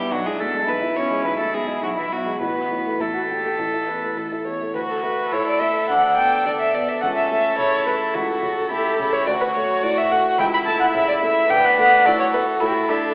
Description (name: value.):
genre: quick classical-period movement for piano quartet.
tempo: 106 BPM.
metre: 4/4.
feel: rubato.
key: D major.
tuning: A4 = 440 Hz.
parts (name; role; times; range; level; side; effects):
dark violin; melody; 0.0-13.1 s; D4 to B5; -23 LUFS; equal; none.
warm cello; second line; 0.0-13.0 s; E3 to B4; -28 LUFS; equal; none.
warm violin; second line; 0.0-13.1 s; C#4 to C#5; -27 LUFS; equal; none.
warm baby grand piano; accompaniment; 0.0-13.1 s; A1 to F#4; -30 LUFS; equal; none.
room: wet recital hall reverb, RT60 1.6 s.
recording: recorded in a church or concert hall, telephone sound.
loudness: -20 LUFS.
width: mono.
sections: 0.0-4.8 A section; 4.8-13.1 B section.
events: none.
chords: 0.1 E7/B; 2.4 Gmaj9/A; 3.6 A; 4.8 D; 5.9 D69; 7.0 A7/C#; 9.3 D; 10.4 A/C#; 11.5 D.